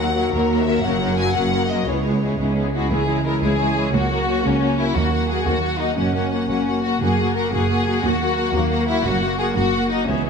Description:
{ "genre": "cinematic", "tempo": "117 BPM (dotted quarters)", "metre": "6/8", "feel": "straight", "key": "unclear", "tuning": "A4 = 440 Hz", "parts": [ { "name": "warm symphonic violin section", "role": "melody", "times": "0.0-10.3 s", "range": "A#4 to G#5", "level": "-28 LUFS", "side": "left 4 dB", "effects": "none" }, { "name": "warm symphonic violin section", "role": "second line", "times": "0.0-10.3 s", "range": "A#3 to A#4", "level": "-23 LUFS", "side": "left 4 dB", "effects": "none" }, { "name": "warm studio viola section", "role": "accompaniment", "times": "0.0-10.3 s", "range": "F#3 to G#4", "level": "-24 LUFS", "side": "left 2 dB", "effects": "none" }, { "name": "dark French horn section", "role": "sustained chords", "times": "0.0-2.9 s", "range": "A#3 to F#4", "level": "-27 LUFS", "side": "left 8 dB", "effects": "none" }, { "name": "rich symphonic cello section", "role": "bass", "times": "0.0-10.3 s", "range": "C#2 to F#2", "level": "-26 LUFS", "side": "right 2 dB", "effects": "none" }, { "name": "rich symphonic double bass section", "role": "bass", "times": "0.0-10.3 s", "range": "F#1 to D#2", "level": "-25 LUFS", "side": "right 3 dB", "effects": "none" }, { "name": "dark trombone section", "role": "sustained chords", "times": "2.9-10.3 s", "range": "E3 to C#4", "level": "-28 LUFS", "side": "right 6 dB", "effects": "none" }, { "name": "timpani", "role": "percussion", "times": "2.9-3.4, 10.1-10.3 s", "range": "C#3", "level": "-28 LUFS", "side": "equal", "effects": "none" } ], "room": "moderate scoring stage reverb, RT60 1.8 s", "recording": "none", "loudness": "-18 LUFS", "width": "side -6 dB against mid", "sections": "0.0-2.9 A section; 2.9-10.3 A section", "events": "none", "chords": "0.0 D#m; 0.8 F#; 1.9 C#m7; 2.9 C#m; 3.9 F#/C#; 5.0 D#m; 6.0 F#; 8.0 D#m; 9.1 F#", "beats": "0.33 | 0.83 1.34 | 1.86 2.39 | 2.91 3.42 | 3.94 4.45 | 4.95 5.46 | 5.97 6.49 | 7.01 7.53 | 8.04 8.54 | 9.05 9.57 | 10.09" }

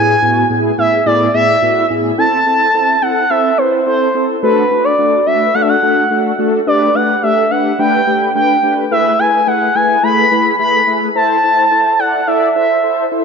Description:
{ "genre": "pop", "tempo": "107 BPM", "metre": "4/4", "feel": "straight", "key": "A dorian", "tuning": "A4 = 440 Hz", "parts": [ { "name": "expressive portamento lead", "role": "melody", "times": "0.0-13.1 s", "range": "B4 to B5", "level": "-12 LUFS", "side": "equal", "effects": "chorus, ping-pong delay" }, { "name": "mellow synth brass", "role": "accompaniment", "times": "0.0-13.2 s", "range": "A2 to D5", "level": "-16 LUFS", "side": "equal", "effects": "chorus" } ], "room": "wet lush hall reverb, RT60 3.0 s", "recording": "dark, warm production, nothing above 7.9 kHz", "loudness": "-10 LUFS", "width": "side -5 dB against mid", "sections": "0.0-13.2 A section", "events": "none", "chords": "0.0 E/A; 2.2 Am; 4.4 D6/A; 6.7 G/A; 8.9 E/A; 11.2 Am", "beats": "0.50 1.06 1.62 | 2.18 2.74 3.30 3.86 | 4.42 4.98 5.54 6.11 | 6.67 7.23 7.79 8.35 | 8.91 9.47 10.03 10.59 | 11.15 11.71 12.27 12.83" }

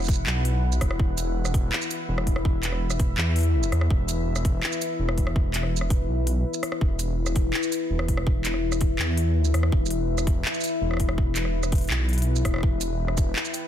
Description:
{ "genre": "half-time drum and bass", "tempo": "165 BPM", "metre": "4/4", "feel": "half-time", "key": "E minor", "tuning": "A4 = 440 Hz", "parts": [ { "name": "deep dark ambient pad", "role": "sustained chords", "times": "0.0-13.7 s", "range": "E4 to G5", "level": "-30 LUFS", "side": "left 4 dB", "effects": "chorus, built-in reverb, sidechain pumping" }, { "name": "dark detuned saw bass", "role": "bass", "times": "0.0-13.3 s", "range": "E1 to E2", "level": "-25 LUFS", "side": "equal", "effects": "none" }, { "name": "drum and bass drum kit", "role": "drums", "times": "0.0-13.6 s", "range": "handclaps, hi-hat, rim click, shaker", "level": "-30 LUFS", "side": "right 1 dB", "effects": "small room reverb" }, { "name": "electronic kick drum", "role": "drums", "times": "0.1-13.2 s", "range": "none", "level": "-23 LUFS", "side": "equal", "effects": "small room reverb" } ], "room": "digital ambience", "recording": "dense, heavily limited modern master", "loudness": "-22 LUFS", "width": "side -10 dB against mid", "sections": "0.0-13.7 A section", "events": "break 6.4-6.8", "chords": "0.0 E5", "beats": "0.27 0.63 | 0.99 1.36 1.72 2.08 | 2.45 2.81 3.18 3.54 | 3.90 4.27 4.63 4.99 | 5.36 5.72 6.08 6.45 | 6.81 7.18 7.54 7.90 | 8.27 8.63 8.99 9.36 | 9.72 10.09 10.45 10.81 | 11.18 11.54 11.90 12.27 | 12.63 12.99 13.36" }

